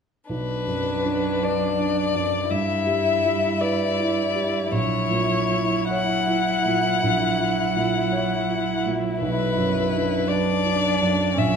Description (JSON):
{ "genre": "classical, slow romantic movement for piano quartet", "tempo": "48-57 BPM (dotted quarters)", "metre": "12/8", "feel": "rubato", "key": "B minor", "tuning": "A4 = 440 Hz", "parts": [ { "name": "rich violin", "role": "melody", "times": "0.3-11.6 s", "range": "B4 to F#5", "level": "-24 LUFS", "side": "left 4 dB", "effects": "none" }, { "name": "dark violin", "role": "second line", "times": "0.3-11.6 s", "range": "C#4 to E4", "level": "-28 LUFS", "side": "left 2 dB", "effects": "none" }, { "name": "warm cello", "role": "second line", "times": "0.3-11.6 s", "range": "F#3 to G3", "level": "-28 LUFS", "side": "right 6 dB", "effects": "none" }, { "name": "dark grand piano", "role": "accompaniment", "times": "0.3-11.6 s", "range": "A#1 to C#5", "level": "-26 LUFS", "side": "right 3 dB", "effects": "none" } ], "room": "moderate recital hall reverb, RT60 1.5 s", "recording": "minimal, uncompressed stereo recording", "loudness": "-20 LUFS", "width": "side -6 dB against mid", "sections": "0.3-11.6 A section", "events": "none", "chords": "0.3 Bm; 2.5 Em/G; 4.7 F#7/A#; 9.2 Bm" }